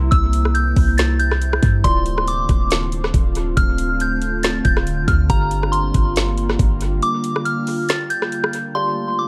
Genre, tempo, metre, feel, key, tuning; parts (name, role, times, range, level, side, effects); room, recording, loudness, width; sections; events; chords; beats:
hip hop, atmospheric cloud-rap; 139 BPM; 4/4; half-time; A4 = 438 Hz
glassy FM pad; sustained chords; 0.0-9.3 s; C3 to F4; -27 LUFS; equal; ensemble chorus, built-in reverb, sidechain pumping
clean 808-style bass; bass; 0.0-7.0 s; D1 to G2; -22 LUFS; equal
kalimba; texture; 0.0-9.3 s; E4 to C6; -36 LUFS; equal
soft synth bell; melody; 0.1-9.3 s; Bb5 to A6; -25 LUFS; equal; chorus, low-pass filter, tape echo
trap drum kit; drums; 0.1-8.6 s; hi-hat, kick drum, rim click, snare drum; -22 LUFS; equal; tape echo
light reverb; echo-heavy mix; -18 LUFS; mono
0.0-8.8 A section
break 7.0-8.8
0.0 C7; 1.8 Dm7; 5.3 Gm7; 8.8 F69
| 0.12 0.55 0.98 1.41 | 1.84 2.27 2.71 3.14 | 3.57 4.00 4.43 4.87 | 5.30 5.73 6.16 6.59 | 7.02 7.46 7.89 8.32 | 8.75 9.18